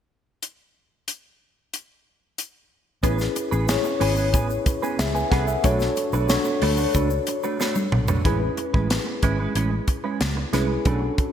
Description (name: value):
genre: polished 1980s jazz-funk pop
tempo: 92 BPM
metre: 4/4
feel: straight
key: A major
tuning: A4 = 439 Hz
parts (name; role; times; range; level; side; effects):
- tight funk drum kit; drums; 0.4-11.3 s; hi-hat, kick drum, snare drum, toms; -24 LUFS; equal; gated reverb
- mellow tine electric piano; accompaniment; 3.0-11.3 s; C#4 to G#5; -25 LUFS; left 2 dB; medium stereo tremolo, wide subtle chorus
- clean electric guitar; riff; 3.0-11.2 s; G#3 to B4; -28 LUFS; right 6 dB; analog chorus
- vintage muted fingered electric bass; bass; 3.0-11.1 s; G#1 to D2; -25 LUFS; equal; none
- egg shaker; percussion; 3.0-8.2 s; none; -40 LUFS; left 8 dB; none
room: moderate lush hall reverb, RT60 1.7 s, studio reverb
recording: bright 1980s-style digital production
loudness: -20 LUFS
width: side -9 dB against mid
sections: 0.4-3.0 A section; 3.0-8.2 B section; 8.2-11.3 C section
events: drum fill 7.6-8.2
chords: 0.4 N.C.; 3.0 Amaj9; 5.6 Bm7; 8.2 Amaj9